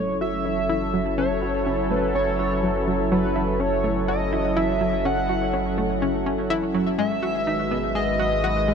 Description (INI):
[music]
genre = ambient, sequencer-driven space music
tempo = 124 BPM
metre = 4/4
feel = straight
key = unclear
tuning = A4 = 440 Hz
[part]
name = pulse-width lead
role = melody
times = 0.0-8.7 s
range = B4 to F#5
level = -26 LUFS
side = equal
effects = chorus, tape echo
[part]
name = sweeping resonant pad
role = sustained chords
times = 0.0-8.7 s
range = D#3 to B4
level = -25 LUFS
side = equal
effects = chorus
[part]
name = analog pluck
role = riff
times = 0.0-8.7 s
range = F#3 to G#4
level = -27 LUFS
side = equal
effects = chorus, vintage 12-bit sampler grit, tape echo
[part]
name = warm sub bass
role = bass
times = 0.0-8.7 s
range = F#1 to G#1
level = -31 LUFS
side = equal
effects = none
[sound]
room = wet huge ambient reverb, RT60 7.8 s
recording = none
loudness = -21 LUFS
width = side -6 dB against mid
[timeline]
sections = 0.0-8.7 A section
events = none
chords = 0.0 F#m7; 7.0 G#m7